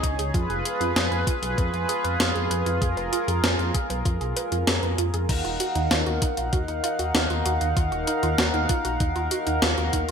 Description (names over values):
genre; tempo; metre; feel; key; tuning
synthwave; 97 BPM; 4/4; straight; Eb minor; A4 = 441 Hz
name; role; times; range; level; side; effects
chorused pulse-width pad; sustained chords; 0.0-10.1 s; Eb4 to Gb5; -26 LUFS; equal; sidechain pumping
analog pluck; arpeggios; 0.0-10.1 s; Eb4 to Cb5; -32 LUFS; right 6 dB; chorus, digital delay
dark detuned saw bass; bass; 0.0-10.1 s; Eb1 to F2; -28 LUFS; equal; none
clean 12-bit digital drum machine; drums; 0.0-10.1 s; crash cymbal, hi-hat, snare drum; -26 LUFS; left 1 dB; gated reverb
electronic kick drum; drums; 0.0-10.1 s; none; -25 LUFS; equal; none
room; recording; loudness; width
moderate plate reverb, RT60 1.6 s; bright 1980s-style digital production; -22 LUFS; side -7 dB against mid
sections
0.0-10.1 A section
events
none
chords
0.3 Fdim; 5.3 Ebmadd9